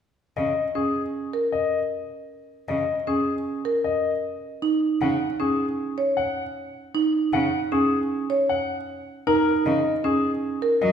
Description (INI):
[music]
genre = classical, minimalist pattern music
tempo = 155 BPM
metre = 6/4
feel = straight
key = unclear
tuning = A4 = 440 Hz
[part]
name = bright grand piano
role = melody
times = 0.4-10.9 s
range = G#4 to F#5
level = -26 LUFS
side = left 4 dB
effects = none
[part]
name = rich cello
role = accompaniment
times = 0.4-10.9 s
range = C#3 to F#3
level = -28 LUFS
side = right 1 dB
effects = none
[part]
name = marimba with medium hard mallets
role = arpeggios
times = 0.8-10.9 s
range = C#4 to C#5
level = -24 LUFS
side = right 2 dB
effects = none
[sound]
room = wet recital hall reverb, RT60 1.6 s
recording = recorded in a church or concert hall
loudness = -22 LUFS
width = side -8 dB against mid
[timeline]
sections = 0.0-10.9 A section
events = none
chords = 0.0 C#sus2; 4.6 N.C.; 9.3 C#sus2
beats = 0.37 0.75 1.14 1.53 1.91 | 2.30 2.69 3.08 3.46 3.85 4.24 | 4.62 5.01 5.40 5.79 6.17 6.56 | 6.95 7.33 7.72 8.11 8.49 8.88 | 9.27 9.66 10.04 10.43 10.82